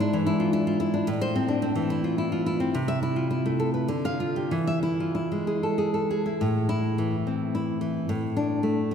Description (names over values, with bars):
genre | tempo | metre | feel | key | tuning
romantic piece for solo classical guitar | 92-113 BPM | 3/4 | rubato | A minor | A4 = 441 Hz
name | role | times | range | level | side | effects
nylon-string guitar | solo | 0.0-8.9 s | G#2 to F5 | -24 LUFS | equal | none
room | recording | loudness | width
wet cathedral reverb, RT60 4.2 s | recorded in a church or concert hall | -24 LUFS | side -7 dB against mid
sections
0.0-6.4 A section; 6.4-8.9 B section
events
none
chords
0.0 E7/G#; 1.1 Am; 2.7 Am/C; 3.9 Dm; 4.5 E; 6.4 Am; 8.1 Asus4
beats
0.00 0.53 | 1.08 1.62 2.17 | 2.74 3.31 3.89 | 4.51 5.16 5.80 | 6.43 7.00 7.55 | 8.09 8.63